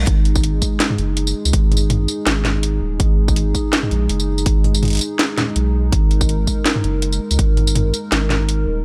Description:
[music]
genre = half-time drum and bass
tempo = 164 BPM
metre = 4/4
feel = swing 56% on 16ths, half-time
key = unclear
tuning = A4 = 439 Hz
[part]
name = dark analog pad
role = sustained chords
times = 0.0-8.8 s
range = G#3 to A#4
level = -27 LUFS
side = equal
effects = chorus, sidechain pumping
[part]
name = saturated sub bass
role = bass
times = 0.0-8.8 s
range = D#1 to C#2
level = -20 LUFS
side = equal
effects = none
[part]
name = drum and bass drum kit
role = drums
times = 0.1-8.6 s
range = hi-hat, snare drum, tambourine, toms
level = -22 LUFS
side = equal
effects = none
[part]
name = electronic kick drum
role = drums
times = 0.1-7.5 s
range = none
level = -20 LUFS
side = equal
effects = none
[sound]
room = digital ambience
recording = none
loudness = -18 LUFS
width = mono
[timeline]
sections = 0.0-8.8 A section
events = none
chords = 0.0 G#5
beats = | 0.07 0.44 0.80 1.17 | 1.53 1.90 2.27 2.63 | 3.00 3.36 3.73 4.10 | 4.46 4.83 5.19 5.56 | 5.92 6.29 6.66 7.02 | 7.39 7.75 8.12 8.49

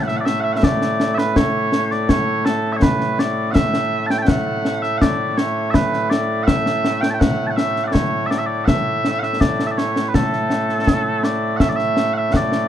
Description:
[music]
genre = scottish traditional, Scottish pipe music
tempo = 82 BPM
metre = 2/4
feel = straight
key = A major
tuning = A4 = 440 Hz
[part]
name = mellow small bagpipes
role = melody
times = 0.0-12.7 s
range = A2 to A5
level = -19 LUFS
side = right 1 dB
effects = none
[part]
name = concert snare drum and concert bass drum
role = drums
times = 0.1-12.7 s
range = none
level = -19 LUFS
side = left 1 dB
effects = none
[sound]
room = light reverb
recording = dark, warm production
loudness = -16 LUFS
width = side -10 dB against mid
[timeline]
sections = 0.0-11.6 A section; 11.6-12.7 A section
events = none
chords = none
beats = 0.63 | 1.36 2.10 | 2.83 3.56 | 4.29 5.02 | 5.75 6.49 | 7.22 7.95 | 8.68 9.41 | 10.14 10.88 | 11.61 12.34

